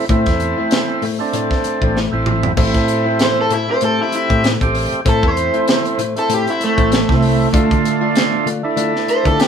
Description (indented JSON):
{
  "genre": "straight-eighth soul blues",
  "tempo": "97 BPM",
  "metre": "4/4",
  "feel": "swing 56% on 16ths",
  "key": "A minor",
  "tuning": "A4 = 442 Hz",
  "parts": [
    { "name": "overdriven semi-hollow guitar", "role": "melody", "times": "0.0-9.5 s", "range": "A3 to C5", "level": "-17 LUFS", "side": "right 1 dB", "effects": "none" },
    { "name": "overdriven tonewheel organ", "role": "accompaniment", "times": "0.0-9.4 s", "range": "A3 to G4", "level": "-19 LUFS", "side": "right 2 dB", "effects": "slow rotary speaker" },
    { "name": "direct-recorded clean electric guitar", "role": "stabs", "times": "0.1-9.5 s", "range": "A2 to F4", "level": "-23 LUFS", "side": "left 6 dB", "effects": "warbly pitch drift" },
    { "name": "vintage muted fingered electric bass", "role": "bass", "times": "0.1-9.5 s", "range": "A1 to D3", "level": "-21 LUFS", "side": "equal", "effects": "none" },
    { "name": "tight funk drum kit", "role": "drums", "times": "0.1-9.5 s", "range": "crash cymbal, hi-hat, kick drum, snare drum, toms", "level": "-18 LUFS", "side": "equal", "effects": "none" }
  ],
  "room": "wet studio reverb, RT60 0.5 s",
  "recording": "band playing live in one room",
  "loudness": "-14 LUFS",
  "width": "side -7 dB against mid",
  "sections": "0.0-2.6 A section; 2.6-9.5 B section",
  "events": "drum fill 2.0-2.6; overdriven electric guitar solo 2.6-9.5",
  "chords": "0.0 Am; 7.5 Dm"
}